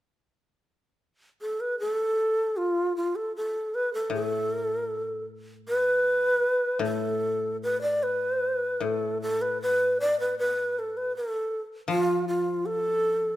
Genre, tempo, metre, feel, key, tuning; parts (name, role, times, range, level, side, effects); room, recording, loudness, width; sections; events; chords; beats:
japanese traditional, Japanese chamber music; 78 BPM; 2/4; rubato; A4 = 439 Hz
breathy long shakuhachi; melody; 1.4-13.4 s; F4 to D5; -25 LUFS; equal
koto; accompaniment; 4.1-13.4 s; A2 to F3; -33 LUFS; left 5 dB
moderate recital hall reverb, RT60 1.4 s; -25 LUFS; side -14 dB against mid
1.0-2.6 A section; 2.6-13.4 B section
| 1.01 1.79 | 2.56 3.35 | 4.13 4.90 | 5.67 6.44 | 7.21 8.00 | 8.81 9.61 | 10.39 11.15 | 11.90 12.65